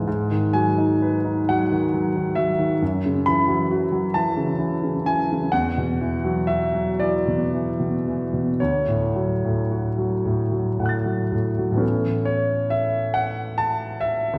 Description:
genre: classical, impressionist solo piano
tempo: 36-47 BPM (dotted quarters)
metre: 6/8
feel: rubato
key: A major from 5.5 s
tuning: A4 = 444 Hz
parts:
  - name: clear grand piano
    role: solo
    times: 0.0-14.4 s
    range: C#2 to A6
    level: -22 LUFS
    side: equal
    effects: none
room: wet concert hall reverb, RT60 1.7 s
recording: heard from further back in the room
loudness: -22 LUFS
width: mono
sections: 0.0-11.8 A section; 11.8-14.4 B section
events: none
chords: 0.1 G#m7; 2.8 F#m7; 5.5 Esus2; 8.6 Dmaj7; 11.8 Aadd9

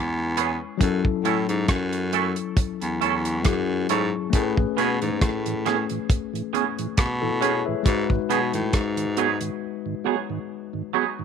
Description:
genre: lovers rock reggae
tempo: 68 BPM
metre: 4/4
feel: swing 55% on 16ths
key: unclear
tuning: A4 = 440 Hz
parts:
  - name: tine electric piano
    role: accompaniment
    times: 0.0-11.2 s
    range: F#3 to E5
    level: -28 LUFS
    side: left 12 dB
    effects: overdrive
  - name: breathy baritone saxophone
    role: bass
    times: 0.0-9.4 s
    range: E2 to B2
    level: -26 LUFS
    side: equal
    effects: none
  - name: twangy electric guitar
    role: stabs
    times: 0.4-11.1 s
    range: E3 to A4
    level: -26 LUFS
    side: right 13 dB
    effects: wide subtle chorus, slapback echo
  - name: damped 70s drum kit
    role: drums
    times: 0.4-9.6 s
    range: hi-hat, kick drum, rim click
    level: -23 LUFS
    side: equal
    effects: none
  - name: mellow tonewheel organ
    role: accompaniment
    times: 4.6-11.2 s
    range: G#2 to G#4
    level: -30 LUFS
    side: right 11 dB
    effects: slow rotary speaker
room: light reverb, studio reverb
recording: 1960s-style stereo with parts hard left and right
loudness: -21 LUFS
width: side -7 dB against mid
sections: 0.0-11.2 A section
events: break 9.6-11.2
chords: 0.0 C#m7; 0.8 F#m7; 4.3 Amaj9; 7.9 G#m7

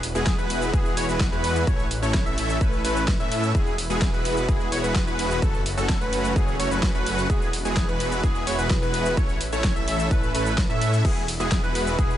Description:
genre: EDM, festival progressive house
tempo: 128 BPM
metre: 4/4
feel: straight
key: E major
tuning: A4 = 440 Hz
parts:
  - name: lush unison pad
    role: sustained chords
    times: 0.0-12.2 s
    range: E3 to B4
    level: -33 LUFS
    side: equal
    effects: chorus, phaser, sidechain pumping
  - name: wide detuned saw bass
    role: bass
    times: 0.0-12.2 s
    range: E1 to A2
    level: -28 LUFS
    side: equal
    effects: chorus, sidechain pumping
  - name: big-room dance drum kit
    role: drums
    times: 0.0-12.2 s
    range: cabasa, crash cymbal, hi-hat, snare drum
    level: -31 LUFS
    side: equal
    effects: overdrive
  - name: wide unison lead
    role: arpeggios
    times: 0.1-12.2 s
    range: G#4 to E5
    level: -29 LUFS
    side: equal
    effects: wide subtle chorus, sidechain pumping, digital delay
  - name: big supersaw lead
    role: riff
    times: 0.1-12.2 s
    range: F#3 to E5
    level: -28 LUFS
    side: equal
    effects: sidechain pumping, digital delay
  - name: electronic kick drum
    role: drums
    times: 0.3-12.1 s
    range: none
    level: -24 LUFS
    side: equal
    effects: none
room: digital ambience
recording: nothing above 10.6 kHz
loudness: -21 LUFS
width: side -12 dB against mid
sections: 0.0-11.0 A section; 11.0-12.2 A section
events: drop 0.0-11.0, 11.0-12.2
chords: 0.0 Eadd9; 1.7 A; 3.5 Eadd9; 5.4 F#m; 7.3 Eadd9; 9.2 A; 11.0 Eadd9

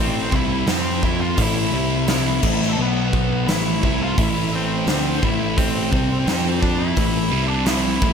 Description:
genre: quiet-loud alternative rock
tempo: 86 BPM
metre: 4/4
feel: straight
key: A minor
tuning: A4 = 439 Hz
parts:
  - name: octave-fuzz lead guitar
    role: melody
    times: 0.0-8.1 s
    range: B3 to F5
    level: -26 LUFS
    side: left 1 dB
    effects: distortion, slapback echo
  - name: fuzz guitar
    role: riff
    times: 0.0-8.1 s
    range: A2 to F4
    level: -25 LUFS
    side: right 11 dB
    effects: distortion
  - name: thick fuzz guitar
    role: riff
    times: 0.0-8.1 s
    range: A2 to F4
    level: -24 LUFS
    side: left 12 dB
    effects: distortion, slapback echo
  - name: overdriven picked electric bass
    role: bass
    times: 0.0-8.1 s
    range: A1 to F2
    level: -25 LUFS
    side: equal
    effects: none
  - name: big rock drum kit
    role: drums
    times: 0.3-8.1 s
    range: crash cymbal, hi-hat, kick drum, snare drum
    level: -22 LUFS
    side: equal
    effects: none
room: light reverb, studio reverb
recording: none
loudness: -17 LUFS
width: side -6 dB against mid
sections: 0.0-8.1 A section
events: none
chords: 0.0 Am; 0.7 F5; 1.4 A5; 1.7 C5; 2.4 A5; 2.8 B5; 3.5 Am; 6.3 F5; 7.0 A5; 7.3 C5

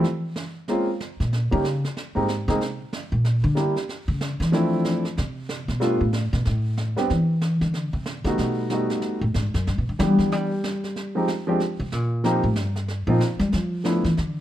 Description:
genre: jazz piano trio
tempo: 187 BPM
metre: 4/4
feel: swing 61% on 8ths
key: C major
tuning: A4 = 440 Hz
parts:
  - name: warm concert grand piano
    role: melody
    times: 0.0-14.0 s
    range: E3 to Ab4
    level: -23 LUFS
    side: equal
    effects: none
  - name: brushed snare drum and snare drum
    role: drums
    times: 0.0-14.4 s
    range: none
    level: -34 LUFS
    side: right 3 dB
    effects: none
  - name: upright bass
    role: bass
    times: 1.2-14.4 s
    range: F#2 to G3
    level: -23 LUFS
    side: equal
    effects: none
room: light reverb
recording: dark, warm production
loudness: -21 LUFS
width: side -12 dB against mid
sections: 0.0-7.1 A section; 7.1-14.4 A section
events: upright bass solo 0.0-14.4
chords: 0.0 N.C.; 0.7 Bbm9; 1.3 Eb7 (rootless); 2.0 Abadd9; 3.2 Em7b5; 3.9 Dbm; 4.5 Dm9; 5.8 Gadd9; 7.1 Cadd9; 8.4 B7b13; 9.7 Em7; 11.0 Fm; 11.6 Bbsus2; 12.2 Eb69; 13.5 Dmadd9

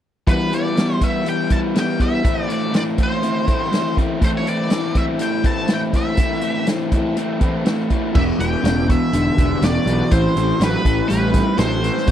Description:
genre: blues rock power trio and southern rock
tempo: 122 BPM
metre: 4/4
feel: straight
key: unclear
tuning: A4 = 440 Hz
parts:
  - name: octave-fuzz lead guitar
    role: melody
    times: 0.3-12.1 s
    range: B4 to A5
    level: -24 LUFS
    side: equal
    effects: wah, distortion
  - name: crunchy overdriven guitar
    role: riff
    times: 0.3-12.1 s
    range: E2 to E4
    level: -20 LUFS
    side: left 1 dB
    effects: none
  - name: vintage drum kit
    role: drums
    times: 0.3-12.1 s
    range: crash cymbal, hi-hat, kick drum, snare drum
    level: -19 LUFS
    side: equal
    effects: none
  - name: overdriven tonewheel organ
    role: sustained chords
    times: 8.1-12.1 s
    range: C4 to C5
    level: -29 LUFS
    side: right 4 dB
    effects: slow rotary speaker, chorus vibrato
  - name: fuzz picked electric bass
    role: bass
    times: 8.2-12.1 s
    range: E1 to B1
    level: -21 LUFS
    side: equal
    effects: overdrive
room: little or no reverb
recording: dry, close 1970s-style studio recording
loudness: -16 LUFS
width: side -10 dB against mid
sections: 0.3-8.2 A section; 8.2-12.1 B section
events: none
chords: 0.3 Em7; 2.3 Am; 8.2 Em9; 10.1 Am9

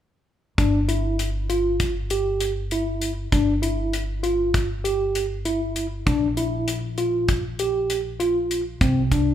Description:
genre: progressive instrumental, band music in an uneven meter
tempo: 197 BPM (eighths)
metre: 9/8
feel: straight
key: G dorian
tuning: A4 = 439 Hz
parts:
  - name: mellow tine electric piano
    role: arpeggios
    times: 0.6-9.3 s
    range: C4 to G4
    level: -23 LUFS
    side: equal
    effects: medium stereo tremolo
  - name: upright bass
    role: bass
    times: 0.6-9.3 s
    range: G1 to C2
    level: -27 LUFS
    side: equal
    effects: none
  - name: deep reggae drum kit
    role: drums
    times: 0.6-9.3 s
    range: hi-hat, kick drum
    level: -26 LUFS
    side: equal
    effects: none
room: moderate large studio reverb, RT60 1.2 s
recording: band playing live in one room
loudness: -21 LUFS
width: side -10 dB against mid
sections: 0.6-9.3 A section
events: none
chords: 0.6 G5; 6.1 Bb5; 8.8 N.C.

